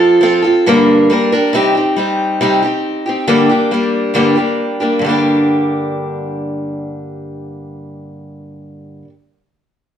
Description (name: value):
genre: rock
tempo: 137 BPM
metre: 4/4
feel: straight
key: G minor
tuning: A4 = 440 Hz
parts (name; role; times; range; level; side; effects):
- picked steel-string acoustic guitar; solo; 0.0-9.1 s; G2 to Bb4; -13 LUFS; equal; slapback echo
room: wet stone room reverb, RT60 1.1 s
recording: band playing live in one room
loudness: -12 LUFS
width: side -9 dB against mid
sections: 0.0-1.5 A section; 1.5-5.0 B section; 5.0-8.5 C section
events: none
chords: 0.0 F; 0.7 Gm; 1.5 Cm; 3.3 Gm